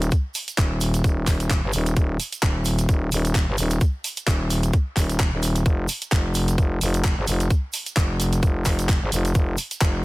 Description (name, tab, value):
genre	bass house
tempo	130 BPM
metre	4/4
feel	swing 56% on 16ths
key	unclear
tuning	A4 = 440 Hz
part	growling FM bass	bass	0.0-10.0 s	Eb1 to Ab1	-22 LUFS	equal	tube saturation, sidechain pumping
part	garage drum kit	drums	0.0-9.9 s	handclaps, hi-hat	-27 LUFS	equal	overdrive
part	tube shaker	percussion	0.0-9.9 s	none	-33 LUFS	right 5 dB	none
part	electronic kick drum	drums	0.1-9.9 s	none	-20 LUFS	equal	overdrive
room	little or no reverb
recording	dense, heavily limited modern master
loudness	-20 LUFS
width	side -20 dB against mid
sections	0.0-10.0 A section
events	none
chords	none